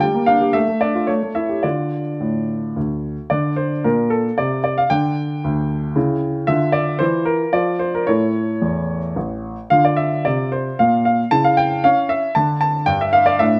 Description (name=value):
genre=classical-period piano sonatina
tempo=113 BPM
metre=3/4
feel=rubato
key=D minor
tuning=A4 = 443 Hz
part: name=clear grand piano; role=solo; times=0.0-13.6 s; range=A1 to A5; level=-18 LUFS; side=equal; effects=none
room=moderate stone room reverb, RT60 1.3 s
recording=none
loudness=-19 LUFS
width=mono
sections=0.0-3.3 A section; 3.3-13.6 A section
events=none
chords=0.0 Gm; 0.6 Dm/A; 1.1 A7; 1.6 Dm; 3.3 Bbmaj9; 4.9 N.C.; 6.0 C#dim; 6.5 Dm; 7.5 N.C.; 8.1 A; 9.7 Dm; 11.3 C#dim; 12.4 N.C.; 12.9 G5